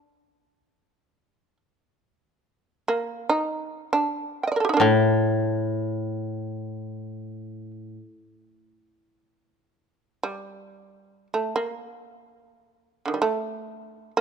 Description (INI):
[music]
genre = japanese traditional, Japanese chamber music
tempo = free time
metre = none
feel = none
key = unclear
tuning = A4 = 440 Hz
[part]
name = shamisen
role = melody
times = 0.0-14.2 s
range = D3 to G5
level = -24 LUFS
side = right 3 dB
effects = none
[part]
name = koto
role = accompaniment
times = 4.8-8.0 s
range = A2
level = -23 LUFS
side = left 2 dB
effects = none
[sound]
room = light reverb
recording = close, detailed microphones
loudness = -23 LUFS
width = side -6 dB against mid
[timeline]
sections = 0.0-14.2 A section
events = none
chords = none